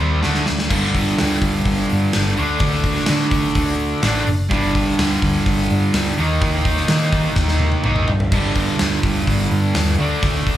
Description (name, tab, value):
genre	hard rock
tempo	126 BPM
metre	4/4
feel	straight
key	G minor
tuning	A4 = 439 Hz
part	cranked stack guitar	riff	0.0-10.6 s	G2 to Eb4	-19 LUFS	right 1 dB	overdrive, slapback echo
part	hollow-body short-scale picked electric bass	bass	0.0-10.6 s	F#1 to Eb3	-21 LUFS	equal	none
part	gated 80s drum kit	drums	0.2-10.6 s	crash cymbal, hi-hat, kick drum, snare drum, toms	-21 LUFS	equal	none
room	light reverb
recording	live gig heard through the venue's PA, club reverb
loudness	-16 LUFS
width	side -12 dB against mid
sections	0.7-10.6 A section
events	drum fill 0.2-0.7, 7.4-8.3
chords	0.2 D5; 0.7 G5; 2.4 D5; 4.5 G5; 6.2 Eb5; 8.3 G5; 10.0 D5